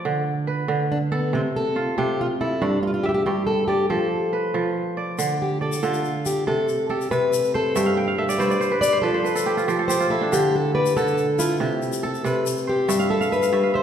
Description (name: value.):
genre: west african traditional, West African string and xylophone music.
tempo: 93 BPM (dotted quarters).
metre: 12/8.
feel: straight.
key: D dorian.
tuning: A4 = 440 Hz.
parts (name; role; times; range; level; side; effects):
kora; arpeggios; 0.0-13.8 s; G2 to G5; -23 LUFS; right 3 dB; none.
fingerpicked plugged-in steel-string acoustic guitar; melody; 0.9-13.8 s; B3 to D5; -22 LUFS; left 2 dB; none.
tube shaker; percussion; 5.2-13.5 s; none; -34 LUFS; left 7 dB; none.
room: wet recital hall reverb, RT60 1.7 s.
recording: heard from further back in the room.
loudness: -20 LUFS.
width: side -8 dB against mid.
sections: 0.0-5.2 A section; 5.2-13.8 B section.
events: steel-string acoustic guitar solo 5.2-13.8; kora fill 7.8-10.3, 12.9-13.8.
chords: 0.0 D5; 1.3 F/C; 2.6 G5; 3.9 F; 5.2 Dm; 6.5 Amadd9/C; 7.8 G; 9.0 N.C.; 10.3 D5; 11.6 C; 12.9 G.